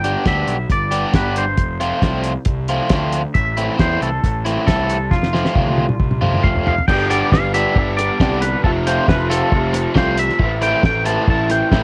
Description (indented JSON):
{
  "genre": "indie rock",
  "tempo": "136 BPM",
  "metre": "4/4",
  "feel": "straight",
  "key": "F lydian",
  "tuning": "A4 = 440 Hz",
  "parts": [
    { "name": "twangy electric guitar", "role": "melody", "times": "0.0-11.8 s", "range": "F4 to A5", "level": "-24 LUFS", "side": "equal", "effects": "cassette tape, analog delay" },
    { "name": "crunchy overdriven guitar", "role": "riff", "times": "0.0-11.8 s", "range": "E3 to G4", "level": "-23 LUFS", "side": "equal", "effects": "cassette tape" },
    { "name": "fuzz picked electric bass", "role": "bass", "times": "0.0-11.8 s", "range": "F1 to E2", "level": "-24 LUFS", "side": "equal", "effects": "overdrive" },
    { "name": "cloth-damped thuddy drum kit", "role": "drums", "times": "0.0-11.8 s", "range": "crash cymbal, hi-hat, kick drum, snare drum, toms", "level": "-20 LUFS", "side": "equal", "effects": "cassette tape" },
    { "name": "crunchy overdriven guitar", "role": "riff", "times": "6.9-11.8 s", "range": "F2 to G4", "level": "-24 LUFS", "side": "equal", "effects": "analog chorus, cassette tape" }
  ],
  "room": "little or no reverb",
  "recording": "home recording on cassette",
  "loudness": "-17 LUFS",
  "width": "mono",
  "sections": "0.0-6.9 A section; 6.9-11.8 B section",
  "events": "drum fill 5.1-6.9",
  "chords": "0.0 G; 1.6 F; 3.4 Am; 5.1 F; 6.9 G; 8.6 F; 10.4 Am7"
}